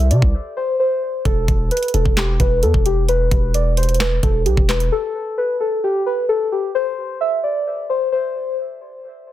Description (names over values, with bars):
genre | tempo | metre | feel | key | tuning
hip hop, trap | 131 BPM | 4/4 | half-time | E minor | A4 = 439 Hz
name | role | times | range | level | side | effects
muted felt-like synth keys | melody | 0.0-8.6 s | G4 to E5 | -20 LUFS | left 1 dB | chorus, phaser, tape echo
long sustained 808-style bass | bass | 0.0-4.9 s | E1 to C3 | -18 LUFS | equal | none
trap drum kit | drums | 0.1-4.9 s | handclaps, hi-hat, kick drum, snare drum | -19 LUFS | equal | none
room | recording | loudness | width
little or no reverb | dense, heavily limited modern master | -16 LUFS | side -13 dB against mid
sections
0.0-1.3 A section; 1.3-8.6 B section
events
break 0.3-1.3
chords
0.0 Csus2; 1.3 E5; 4.9 N.C.